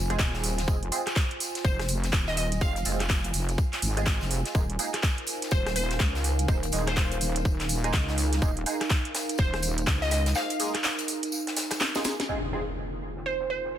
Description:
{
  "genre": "bass house",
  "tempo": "124 BPM",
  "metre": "4/4",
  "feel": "swing 61% on 16ths",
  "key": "F minor",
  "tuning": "A4 = 440 Hz",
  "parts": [
    { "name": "wobble bass", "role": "bass", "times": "0.0-10.3 s", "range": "Eb1 to Db2", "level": "-29 LUFS", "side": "equal", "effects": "chorus, tube saturation, sidechain pumping" },
    { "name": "warbly tape-like pad", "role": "texture", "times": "0.0-13.8 s", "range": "Eb4 to Ab5", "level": "-36 LUFS", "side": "right 2 dB", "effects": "chorus, built-in reverb, sidechain pumping" },
    { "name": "band-passed chord stab", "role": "stabs", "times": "0.1-12.6 s", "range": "Ab3 to C5", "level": "-36 LUFS", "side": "right 3 dB", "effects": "phaser, ensemble chorus, cassette tape, sidechain pumping, dub echo" },
    { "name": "house drum kit", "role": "drums", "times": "0.1-12.3 s", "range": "handclaps, hi-hat, rim click, snare drum", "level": "-30 LUFS", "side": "right 1 dB", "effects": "low-pass filter on hats, small room ambience, low-pass filter on snare" },
    { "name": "tambourine", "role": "percussion", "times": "0.1-12.3 s", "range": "none", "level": "-39 LUFS", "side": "left 4 dB", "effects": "none" },
    { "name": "crisp fusion drum kit", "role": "drums", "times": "0.2-13.8 s", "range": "hi-hat, snare drum, tambourine", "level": "-38 LUFS", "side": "equal", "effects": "sidechain pumping on hats, high-pass filter on hats, low-pass filter on hats, small room ambience, high-pass filter on snare, low-pass filter on snare, sidechain pumping on perc, high-pass filter on perc, low-pass filter on perc, high-pass filter on room, low-pass filter on room" },
    { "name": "electronic kick drum", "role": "drums", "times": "0.2-10.0 s", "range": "none", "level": "-26 LUFS", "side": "equal", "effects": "overdrive, small room ambience" },
    { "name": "glassy wavetable pluck", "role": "melody", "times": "1.6-13.7 s", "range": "C5 to F5", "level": "-33 LUFS", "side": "equal", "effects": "chorus, dub echo" },
    { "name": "impact", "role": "sound effects", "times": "12.3-13.8 s", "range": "none", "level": "-36 LUFS", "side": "equal", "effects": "none" }
  ],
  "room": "light reverb, small room ambience",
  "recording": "dense, heavily limited modern master",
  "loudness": "-25 LUFS",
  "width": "side -11 dB against mid",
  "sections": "0.0-12.3 A section; 12.3-13.8 B section",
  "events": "drum fill 11.8-12.3; band accent 12.2; impact 12.3-13.8",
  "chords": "0.0 Fm; 4.5 Ebsus4; 12.3 Fm",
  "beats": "0.19 | 0.68 1.16 1.65 2.13 | 2.61 3.10 3.58 4.07 | 4.55 5.03 5.52 6.00 | 6.48 6.97 7.45 7.94 | 8.42 8.90 9.39 9.87 | 10.36 10.84 11.32 11.81 | 12.29 12.78 13.26 13.74"
}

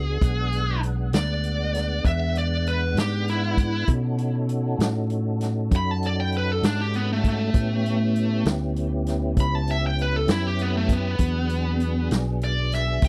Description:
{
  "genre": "slow blues",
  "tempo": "66 BPM (dotted quarters)",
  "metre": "12/8",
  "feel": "straight",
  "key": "E mixolydian",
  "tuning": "A4 = 441 Hz",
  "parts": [
    { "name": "smooth overdriven lead guitar", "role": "melody", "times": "0.0-13.1 s", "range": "A3 to B5", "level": "-29 LUFS", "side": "equal", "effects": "none" },
    { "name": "mellow tonewheel organ", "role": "sustained chords", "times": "0.0-13.1 s", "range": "F#3 to F#5", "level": "-34 LUFS", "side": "equal", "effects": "slow rotary speaker, chorus vibrato" },
    { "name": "fingered electric bass", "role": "bass", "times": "0.0-13.1 s", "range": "B1 to B2", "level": "-27 LUFS", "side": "equal", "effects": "none" },
    { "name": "vintage drum kit", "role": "drums", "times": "0.2-13.1 s", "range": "hi-hat, kick drum, snare drum", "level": "-25 LUFS", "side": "equal", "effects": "none" }
  ],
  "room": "little or no reverb",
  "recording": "dry, close 1970s-style studio recording",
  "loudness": "-24 LUFS",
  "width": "mono",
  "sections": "0.0-13.1 A section",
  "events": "lead electric guitar solo 0.0-13.1",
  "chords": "0.0 E7; 3.9 B7; 7.5 A7; 11.2 E7",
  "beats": "| 0.22 1.14 2.05 2.97 | 3.88 4.80 5.71 6.63 | 7.54 8.46 9.37 10.29 | 11.20 12.11 13.02"
}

